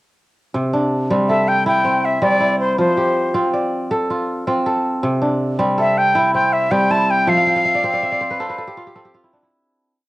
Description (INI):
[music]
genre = west african traditional, West African string and xylophone music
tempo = 107 BPM (dotted quarters)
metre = 12/8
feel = straight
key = C major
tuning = A4 = 440 Hz
[part]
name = kora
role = arpeggios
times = 0.5-10.1 s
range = C3 to G5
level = -18 LUFS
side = right 1 dB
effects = cassette tape
[part]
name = breathy bright concert flute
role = melody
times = 1.3-9.2 s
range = C5 to A5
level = -17 LUFS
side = left 1 dB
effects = cassette tape
[sound]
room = moderate studio reverb, RT60 0.5 s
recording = home recording on cassette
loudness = -15 LUFS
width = side -18 dB against mid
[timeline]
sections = 0.5-9.5 A section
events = fade-out 7.3-9.5; kora fill 7.3-9.5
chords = 0.5 C; 2.8 F; 5.0 C; 7.3 F